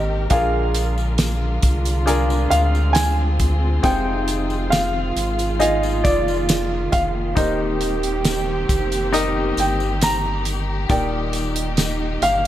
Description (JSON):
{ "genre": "pop ballad", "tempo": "68 BPM", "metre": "4/4", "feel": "straight", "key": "unclear", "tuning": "A4 = 438 Hz", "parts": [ { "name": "dark baby grand piano", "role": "melody", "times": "0.0-12.5 s", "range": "D5 to Bb5", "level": "-23 LUFS", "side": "equal", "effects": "slapback echo, digital delay" }, { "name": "mellow French horn section", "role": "second line", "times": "0.0-12.5 s", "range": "Eb4 to Ab4", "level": "-27 LUFS", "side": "right 4 dB", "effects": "slapback echo" }, { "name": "warm baby grand piano", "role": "accompaniment", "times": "0.0-12.5 s", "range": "Bb2 to F5", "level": "-26 LUFS", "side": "left 3 dB", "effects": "slapback echo" }, { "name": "warm studio string section", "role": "sustained chords", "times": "0.0-12.5 s", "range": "D3 to Bb4", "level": "-29 LUFS", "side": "left 2 dB", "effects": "none" }, { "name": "warm sub bass", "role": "bass", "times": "0.0-12.5 s", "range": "Eb1 to D2", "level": "-23 LUFS", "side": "equal", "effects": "none" }, { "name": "damped 70s drum kit", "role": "drums", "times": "0.3-12.4 s", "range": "hi-hat, kick drum, snare drum", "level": "-22 LUFS", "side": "equal", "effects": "none" }, { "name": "tambourine", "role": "percussion", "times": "0.3-12.4 s", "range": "none", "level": "-34 LUFS", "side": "left 8 dB", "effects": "none" } ], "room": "light reverb, small room ambience", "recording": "none", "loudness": "-17 LUFS", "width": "side -12 dB against mid", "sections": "0.0-12.5 A section", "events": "none", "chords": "0.3 Bb7; 3.8 Fm7; 7.4 Cm7/Eb; 10.9 Ebmaj7" }